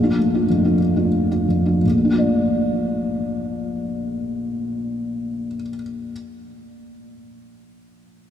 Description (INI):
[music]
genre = classical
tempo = 84 BPM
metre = 3/4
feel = rubato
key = Bb major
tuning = A4 = 444 Hz
[part]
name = felt-muted upright piano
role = accompaniment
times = 0.0-6.1 s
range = Bb1 to D5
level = -19 LUFS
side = equal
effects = none
[sound]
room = wet cathedral reverb, RT60 6.4 s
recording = in a vast, echoing space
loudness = -18 LUFS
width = side -10 dB against mid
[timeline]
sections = 0.0-1.8 A section; 1.8-6.1 B section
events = slowing down 0.0-1.8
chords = 0.0 Bbmaj7 (rootless); 1.8 Bbmaj7